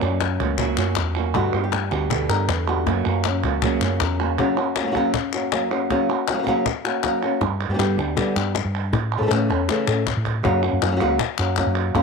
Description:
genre	flamenco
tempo	158 BPM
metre	4/4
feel	straight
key	F# phrygian dominant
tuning	A4 = 440 Hz
part	flamenco guitar	melody	0.0-12.0 s	F#2 to D5	-23 LUFS	left 1 dB	none
part	flamenco guitar	stabs	0.0-4.4 s	B2 to G4	-26 LUFS	right 13 dB	tape echo
part	woody fretless electric bass	bass	0.0-4.4, 7.4-12.0 s	C#2 to A2	-24 LUFS	equal	none
part	cajon	percussion	0.0-12.0 s	none	-29 LUFS	left 8 dB	none
part	palmas hand claps	percussion	0.0-12.0 s	none	-27 LUFS	equal	none
room	light reverb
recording	1960s-style stereo with parts hard left and right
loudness	-19 LUFS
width	side -4 dB against mid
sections	0.0-4.4 A section; 4.4-10.4 B section; 10.4-12.0 B section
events	drum fill 9.7-10.4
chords	0.0 F#; 1.3 G; 2.9 F#; 7.4 G; 8.9 A; 10.4 F#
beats	0.21 0.59 0.97 | 1.35 1.73 2.11 2.49 | 2.87 3.25 3.63 4.01 | 4.39 4.76 5.14 5.52 | 5.90 6.28 6.66 7.04 | 7.42 7.80 8.18 8.56 | 8.93 9.31 9.69 10.07 | 10.45 10.82 11.20 11.58 | 11.95

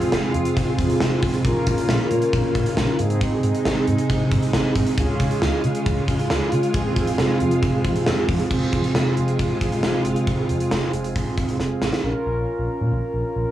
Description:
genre	synth-pop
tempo	136 BPM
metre	4/4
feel	straight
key	F minor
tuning	A4 = 440 Hz
part	mellow synth brass	accompaniment	0.0-13.5 s	C4 to Bb4	-24 LUFS	right 2 dB	chorus
part	soft string machine	sustained chords	0.0-12.0 s	C3 to F4	-24 LUFS	equal	ensemble chorus
part	gated 80s drum kit	drums	0.0-12.0 s	crash cymbal, hi-hat, kick drum, snare drum	-23 LUFS	equal	none
part	smooth gliding synth bass	bass	0.1-13.5 s	F1 to Db3	-26 LUFS	equal	none
room	studio reverb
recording	cassette tape, small room ambience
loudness	-19 LUFS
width	side -12 dB against mid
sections	0.0-8.5 A section; 8.5-12.0 B section; 12.0-13.5 C section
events	drum fill 11.6-12.0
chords	0.0 Fm; 1.4 Bbm; 3.0 Ab; 5.0 Db; 6.7 Fm; 12.0 Bbm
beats	0.12 0.57 1.01 | 1.45 1.89 2.33 2.77 | 3.21 3.65 4.09 4.54 | 4.98 5.42 5.86 6.30 | 6.74 7.18 7.62 8.07 | 8.51 8.95 9.39 9.83 | 10.27 10.71 11.15 11.60 | 12.04 12.48 12.92 13.36

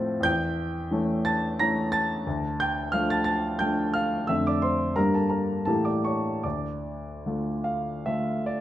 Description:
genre	classical, romantic character piece for solo piano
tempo	72-91 BPM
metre	3/4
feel	rubato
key	D minor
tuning	A4 = 440 Hz
part	warm grand piano	solo	0.0-8.6 s	D2 to Bb6	-24 LUFS	equal	none
room	wet recital hall reverb, RT60 1.4 s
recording	none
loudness	-24 LUFS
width	side -13 dB against mid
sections	0.0-8.6 A section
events	none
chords	0.3 A7/E; 2.3 Dm; 4.3 Dm/F; 5.0 Gm; 5.7 A7b9; 6.4 Dm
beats	| 0.25 0.92 1.58 | 2.26 2.92 3.60 | 4.28 4.95 5.67 | 6.44 7.25 8.06

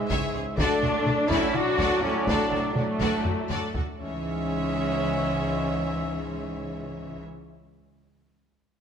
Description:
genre	cinematic, epic orchestral film score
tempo	246 BPM (eighths)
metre	7/8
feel	straight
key	C# phrygian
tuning	A4 = 439 Hz
part	warm symphonic viola section	accompaniment	0.0-7.2 s	E3 to D4	-34 LUFS	equal	none
part	bright trombone section	sustained chords	0.0-7.2 s	G#2 to G#3	-36 LUFS	right 4 dB	none
part	mellow French horn section	sustained chords	0.0-7.2 s	G#3 to F#4	-30 LUFS	left 3 dB	none
part	warm trumpet	stabs	0.0-7.2 s	D5 to E5	-35 LUFS	equal	none
part	rich symphonic cello section	bass	0.0-7.2 s	E3 to F#4	-32 LUFS	right 2 dB	none
part	warm symphonic violin section	melody	0.1-7.2 s	F#4 to E5	-37 LUFS	left 3 dB	none
part	clear symphonic violin section	second line	0.1-7.2 s	D4 to C#5	-34 LUFS	left 2 dB	none
part	rich symphonic double bass section	bass	0.1-7.2 s	C#2 to D2	-33 LUFS	right 4 dB	none
part	taiko ensemble	drums	0.1-4.0 s	none	-31 LUFS	left 1 dB	none
room	moderate scoring stage reverb, RT60 1.7 s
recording	none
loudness	-24 LUFS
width	side -7 dB against mid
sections	0.0-4.0 A section; 4.0-7.4 B section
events	drum fill 3.3-4.0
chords	0.0 C#m; 0.6 D; 4.0 C#m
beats	0.10 0.34 | 0.58 0.82 1.06 1.30 1.55 1.79 2.03 | 2.27 2.52 2.76 3.01 3.25 3.50 3.75 | 4.00 4.25 4.49 4.74 4.98 5.23 5.47 | 5.71 5.96 6.20 6.45 6.69 6.93 7.18

